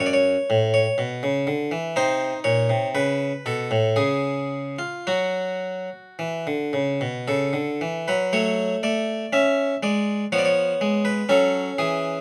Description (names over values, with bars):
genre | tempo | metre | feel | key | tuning
classical, baroque-style suite movement for harpsichord | 53-62 BPM | 3/4 | rubato | F# minor | A4 = 439 Hz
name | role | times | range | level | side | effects
harpsichord | solo | 0.0-12.2 s | F#2 to E5 | -23 LUFS | equal | none
room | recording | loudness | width
light reverb | none | -23 LUFS | mono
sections
0.0-8.3 A section; 8.3-12.2 B section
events
none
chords
0.0 F#m; 1.0 Bmadd9; 2.0 A#sus24; 2.9 Aadd9; 4.0 N.C.; 5.1 F#5; 8.3 F#m; 10.3 C#7/E#; 11.3 F#5